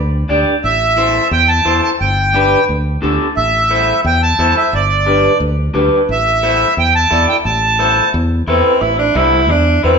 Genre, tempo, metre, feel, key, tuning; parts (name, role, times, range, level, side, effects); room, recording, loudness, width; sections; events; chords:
latin; 176 BPM; 4/4; straight; A minor; A4 = 440 Hz
fingered electric bass; bass; 0.0-10.0 s; G1 to E2; -18 LUFS; equal
electric guitar at the edge of break-up; accompaniment; 0.3-10.0 s; D4 to D5; -16 LUFS; left 1 dB
accordion; melody; 0.6-8.1 s; D5 to A5; -14 LUFS; right 2 dB
bright tenor saxophone; second line; 8.5-10.0 s; C4 to E4; -13 LUFS; right 2 dB
wet stone room reverb, RT60 1.3 s; band playing live in one room, nothing above 7.8 kHz; -11 LUFS; side -5 dB against mid
0.0-8.8 A section; 8.8-10.0 B section
tenor saxophone solo 8.8-10.0
0.0 G5; 0.6 Am; 2.0 G; 3.4 Am; 4.7 G; 6.1 Am